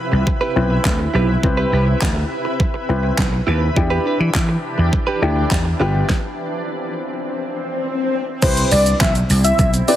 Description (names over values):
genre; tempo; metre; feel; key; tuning
dance-pop; 103 BPM; 4/4; straight; C major; A4 = 443 Hz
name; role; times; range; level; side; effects
shimmering ambient pad; sustained chords; 0.0-10.0 s; C3 to B4; -26 LUFS; equal; chorus, built-in reverb, sidechain pumping
direct-recorded clean electric guitar; riff; 0.1-6.0 s; D4 to B4; -23 LUFS; right 5 dB; wide subtle chorus
vintage slap bass; bass; 0.1-9.8 s; G1 to E3; -18 LUFS; equal; sidechain pumping
pop drum kit; drums; 0.3-10.0 s; crash cymbal, handclaps, hi-hat, kick drum, shaker, snare drum; -19 LUFS; equal; overdrive
dark baby grand piano; accompaniment; 0.6-10.0 s; B3 to B4; -22 LUFS; left 3 dB; sidechain pumping
swell; sound effects; 6.7-8.4 s; none; -24 LUFS; left 3 dB; none
wide unison lead; melody; 8.4-10.0 s; C5 to E5; -18 LUFS; equal; sidechain pumping
room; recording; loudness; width
light reverb; heavily compressed radio sound; -16 LUFS; side -12 dB against mid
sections
0.0-8.4 A section; 8.4-10.0 B section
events
stop 6.1-8.4; swell 6.7-8.4; drop 8.4-10.0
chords
0.0 Cmaj7; 3.8 Em7; 5.8 G7; 8.4 Cmaj7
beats
0.27 0.85 | 1.43 2.02 2.60 3.18 | 3.76 4.35 4.93 5.51 | 6.09 6.68 7.26 7.84 | 8.42 9.01 9.59